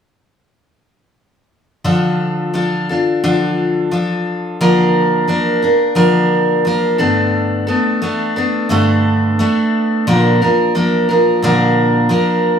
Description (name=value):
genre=rock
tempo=88 BPM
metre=4/4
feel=straight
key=D minor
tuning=A4 = 445 Hz
part: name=picked steel-string acoustic guitar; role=solo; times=1.8-12.6 s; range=G2 to Bb4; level=-12 LUFS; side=equal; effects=none
room=wet studio reverb, RT60 0.5 s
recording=band playing live in one room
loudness=-12 LUFS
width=side -7 dB against mid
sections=1.9-12.6 A section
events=none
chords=1.9 Dm; 4.6 Bb/D; 7.0 Gadd9; 10.1 Bb